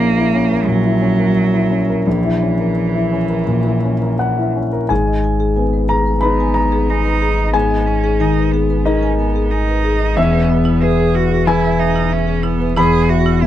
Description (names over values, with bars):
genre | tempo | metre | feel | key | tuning
neoclassical piano and strings | 81-93 BPM | 4/4 | rubato | G# minor | A4 = 442 Hz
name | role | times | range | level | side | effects
rich cello | second line | 0.0-13.5 s | E3 to G#4 | -20 LUFS | right 4 dB | none
warm concert grand piano | accompaniment | 0.0-13.5 s | A#1 to B5 | -16 LUFS | left 2 dB | none
marimba with medium hard mallets | arpeggios | 4.9-13.5 s | E4 to G#5 | -22 LUFS | right 1 dB | tape echo
saturated sub bass | bass | 4.9-13.5 s | E1 to G#1 | -20 LUFS | equal | none
room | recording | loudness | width
light reverb | vinyl crackle | -13 LUFS | side -12 dB against mid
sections
0.0-4.9 A section; 4.9-13.5 A section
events
none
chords
0.0 A#dim; 4.9 G#madd9; 10.2 E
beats
0.00 0.68 1.36 | 2.06 2.76 3.47 4.20 | 4.90 5.56 6.22 6.89 | 7.54 8.20 8.86 9.52 | 10.17 10.82 11.47 12.12 | 12.77 13.42